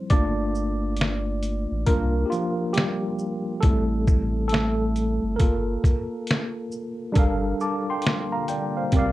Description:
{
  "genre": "lo-fi hip hop",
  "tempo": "68 BPM",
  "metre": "4/4",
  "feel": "swing 62% on 16ths",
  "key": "G dorian",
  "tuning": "A4 = 440 Hz",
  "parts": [
    { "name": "mellow tine electric piano", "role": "accompaniment", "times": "0.0-9.1 s", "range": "C3 to D6", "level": "-25 LUFS", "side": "equal", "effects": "fast stereo tremolo, cassette tape, low-pass filter" },
    { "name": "warm sub bass", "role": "bass", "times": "0.1-9.1 s", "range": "G1 to C2", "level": "-27 LUFS", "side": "equal", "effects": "none" },
    { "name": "trip hop sampler-style drum kit", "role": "drums", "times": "0.1-9.1 s", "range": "hi-hat, kick drum, shaker, snare drum", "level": "-22 LUFS", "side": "equal", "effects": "none" },
    { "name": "deep dark ambient pad", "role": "sustained chords", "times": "7.7-9.1 s", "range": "C3 to G4", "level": "-34 LUFS", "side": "left 2 dB", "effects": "chorus, built-in reverb, low-pass filter" }
  ],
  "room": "moderate studio reverb, RT60 0.6 s",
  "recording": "cassette tape",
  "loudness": "-22 LUFS",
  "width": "side -16 dB against mid",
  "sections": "0.0-7.2 A section; 7.2-9.1 B section",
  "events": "tine electric piano solo 0.0-7.2",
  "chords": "0.1 Gm9; 1.9 C7sus4; 3.6 Am7; 5.4 Gm9"
}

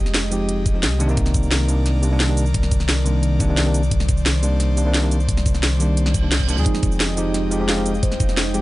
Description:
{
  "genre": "liquid drum and bass",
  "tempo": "175 BPM",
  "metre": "4/4",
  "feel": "straight",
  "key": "unclear",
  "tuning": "A4 = 439 Hz",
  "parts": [
    { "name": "airy breathy pad", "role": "sustained chords", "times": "0.0-8.6 s", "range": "Eb3 to G5", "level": "-28 LUFS", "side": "left 2 dB", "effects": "chorus" },
    { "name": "warm sub bass", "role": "bass", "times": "0.0-8.6 s", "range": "F1 to D2", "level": "-20 LUFS", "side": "equal", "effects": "tube saturation" },
    { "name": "drum and bass drum kit", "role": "drums", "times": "0.1-8.6 s", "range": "hi-hat, shaker, snare drum", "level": "-23 LUFS", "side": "equal", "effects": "none" },
    { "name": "bell-like tine electric piano", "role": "accompaniment", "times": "0.3-8.6 s", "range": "C3 to Ab4", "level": "-24 LUFS", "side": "equal", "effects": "dub echo" },
    { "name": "electronic kick drum", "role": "drums", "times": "0.7-8.3 s", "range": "none", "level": "-21 LUFS", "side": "equal", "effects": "none" },
    { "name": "reverse cymbal", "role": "sound effects", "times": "6.1-6.7 s", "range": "none", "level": "-34 LUFS", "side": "right 7 dB", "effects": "none" },
    { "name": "harp-like synth pluck", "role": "arpeggios", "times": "6.7-8.6 s", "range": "Eb4 to F5", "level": "-27 LUFS", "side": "right 4 dB", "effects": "chorus, digital delay" }
  ],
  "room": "digital ambience",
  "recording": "nothing above 10.8 kHz",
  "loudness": "-16 LUFS",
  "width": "side -18 dB against mid",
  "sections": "0.0-8.6 A section",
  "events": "reverse cymbal 6.1-6.7",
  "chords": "0.0 Fm9; 1.0 Cm9; 6.7 Fm9"
}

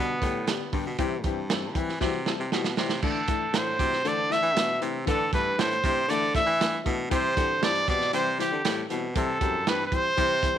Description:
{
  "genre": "uptempo 1960s-style soul",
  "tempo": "118 BPM",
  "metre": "4/4",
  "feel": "straight",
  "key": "unclear",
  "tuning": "A4 = 440 Hz",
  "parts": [
    { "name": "clear trumpet", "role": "melody", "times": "0.0-10.6 s", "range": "B3 to E5", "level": "-26 LUFS", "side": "right 1 dB", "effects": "none" },
    { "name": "clear upright piano", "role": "accompaniment", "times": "0.0-10.6 s", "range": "D3 to B4", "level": "-32 LUFS", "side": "left 12 dB", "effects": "none" },
    { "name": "bright baritone saxophone", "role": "bass", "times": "0.0-10.6 s", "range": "F#2 to E3", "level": "-31 LUFS", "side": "right 1 dB", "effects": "none" },
    { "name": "crunchy breakbeat drum kit", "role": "drums", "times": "0.2-10.6 s", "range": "crash cymbal, hi-hat, kick drum, snare drum", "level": "-29 LUFS", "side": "right 4 dB", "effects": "none" }
  ],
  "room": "light reverb, small room ambience",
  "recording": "1960s-style stereo",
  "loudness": "-23 LUFS",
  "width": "side -10 dB against mid",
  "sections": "0.0-3.0 A section; 3.0-10.6 B section",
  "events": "drum fill 2.0-3.0",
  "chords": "0.0 G; 1.0 C; 3.0 Dsus2; 7.1 C"
}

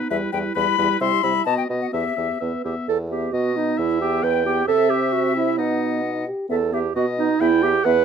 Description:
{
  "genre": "quick classical-period movement for wind quintet",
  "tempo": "132 BPM",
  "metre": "2/4",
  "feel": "rubato",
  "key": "E minor",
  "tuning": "A4 = 441 Hz",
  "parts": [
    { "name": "clear oboe", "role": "second line", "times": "0.0-8.0 s", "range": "B4 to G5", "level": "-28 LUFS", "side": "left 6 dB", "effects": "none" },
    { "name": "dark French horn", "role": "accompaniment", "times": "0.0-8.0 s", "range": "G3 to G4", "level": "-28 LUFS", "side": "left 2 dB", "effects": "none" },
    { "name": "warm clarinet", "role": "accompaniment", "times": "0.0-8.0 s", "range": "D#4 to B4", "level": "-22 LUFS", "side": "right 8 dB", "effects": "none" },
    { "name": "bright concert flute", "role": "melody", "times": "0.1-7.9 s", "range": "D#5 to C6", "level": "-25 LUFS", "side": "left 13 dB", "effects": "none" },
    { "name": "warm bassoon", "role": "bass", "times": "0.1-8.0 s", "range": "E2 to C3", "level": "-27 LUFS", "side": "right 1 dB", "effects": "none" }
  ],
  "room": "light reverb",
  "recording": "close, detailed microphones",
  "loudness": "-19 LUFS",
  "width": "side -7 dB against mid",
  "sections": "0.0-2.9 A section; 2.9-8.0 B section",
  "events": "none",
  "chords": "0.1 Em; 1.0 C; 1.5 B; 1.9 Em; 3.3 B; 3.8 Em; 4.7 C; 5.6 B; 6.5 Em; 7.0 B; 7.4 Em"
}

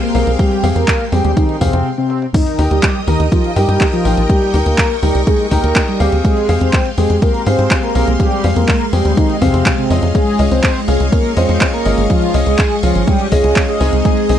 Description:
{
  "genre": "italo disco",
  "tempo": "123 BPM",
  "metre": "4/4",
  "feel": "straight",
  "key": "Eb mixolydian",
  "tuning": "A4 = 440 Hz",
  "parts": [
    { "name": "mellow synth brass", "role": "melody", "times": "0.0-14.3 s", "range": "C3 to C5", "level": "-17 LUFS", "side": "right 1 dB", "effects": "chorus, tape echo" },
    { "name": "string machine, full ensemble", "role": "sustained chords", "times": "0.0-14.4 s", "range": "Ab3 to Eb6", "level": "-22 LUFS", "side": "equal", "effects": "ensemble chorus, vintage 12-bit sampler grit" },
    { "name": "clear grand piano", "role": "stabs", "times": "0.0-14.4 s", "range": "C4 to Bb5", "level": "-20 LUFS", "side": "left 4 dB", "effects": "none" },
    { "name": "house drum kit", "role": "drums", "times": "0.0-14.4 s", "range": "crash cymbal, handclaps, hi-hat, toms", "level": "-21 LUFS", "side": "right 1 dB", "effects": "high-pass filter on hats, studio reverb, high-pass filter on snare, high-pass filter on toms, high-pass filter on cymbals" },
    { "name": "tight sequencer bass", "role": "bass", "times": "0.1-14.4 s", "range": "Ab1 to Ab2", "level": "-15 LUFS", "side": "equal", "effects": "none" },
    { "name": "electronic kick drum", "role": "drums", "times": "0.4-14.1 s", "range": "none", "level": "-15 LUFS", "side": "equal", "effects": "overdrive, studio reverb" }
  ],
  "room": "little or no reverb",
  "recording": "dry, close 1970s-style studio recording",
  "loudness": "-11 LUFS",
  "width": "side -10 dB against mid",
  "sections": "0.0-2.3 A section; 2.3-14.4 B section",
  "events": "filter sweep on analog polysynth 0.0-2.3; break 1.9-2.3; drum fill 2.0-2.3",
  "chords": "0.0 Fmadd9; 2.3 Eb; 6.2 Fmadd9; 10.1 Dbadd9"
}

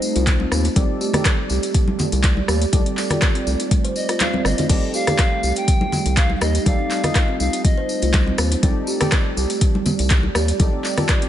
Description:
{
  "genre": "afro house",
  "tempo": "122 BPM",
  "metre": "4/4",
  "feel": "swing 54% on 16ths",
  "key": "C dorian",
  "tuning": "A4 = 438 Hz",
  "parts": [
    { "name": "bright polished pan flute", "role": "melody", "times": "0.0, 4.0-8.4 s", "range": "Eb5 to G5", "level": "-27 LUFS", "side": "left 2 dB", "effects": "dub echo" },
    { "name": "ethereal airy pad", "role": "sustained chords", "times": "0.0-11.3 s", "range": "A3 to D5", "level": "-29 LUFS", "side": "right 1 dB", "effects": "ensemble chorus, built-in reverb, sidechain pumping" },
    { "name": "deep mellow chord stab", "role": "stabs", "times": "0.0-11.3 s", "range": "Eb4 to Eb5", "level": "-31 LUFS", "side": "left 3 dB", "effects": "chorus, phaser, sidechain pumping, dub echo" },
    { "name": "tambourine", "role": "percussion", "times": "0.0-11.2 s", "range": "none", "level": "-31 LUFS", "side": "left 2 dB", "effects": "none" },
    { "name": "kalimba", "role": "arpeggios", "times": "0.2-11.3 s", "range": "G3 to C5", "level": "-26 LUFS", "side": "right 3 dB", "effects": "sidechain pumping, dub echo" },
    { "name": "round analog bass", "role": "bass", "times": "0.2-10.7 s", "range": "G1 to Eb2", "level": "-21 LUFS", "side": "equal", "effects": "sidechain pumping" },
    { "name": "afro-pop drum kit", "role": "drums", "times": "0.2-11.3 s", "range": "crash cymbal, handclaps, hi-hat, rim click", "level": "-24 LUFS", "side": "left 1 dB", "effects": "studio reverb" },
    { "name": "electronic kick drum", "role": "drums", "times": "0.3-11.2 s", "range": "none", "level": "-18 LUFS", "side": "equal", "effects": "studio reverb" },
    { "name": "congas", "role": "percussion", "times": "0.3-11.1 s", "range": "none", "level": "-26 LUFS", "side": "equal", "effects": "none" }
  ],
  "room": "little or no reverb",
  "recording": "nothing above 10.8 kHz",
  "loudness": "-16 LUFS",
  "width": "side -11 dB against mid",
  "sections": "0.0-11.3 A section",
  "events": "kick drops out 4.2-4.7",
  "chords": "0.0 Cm69"
}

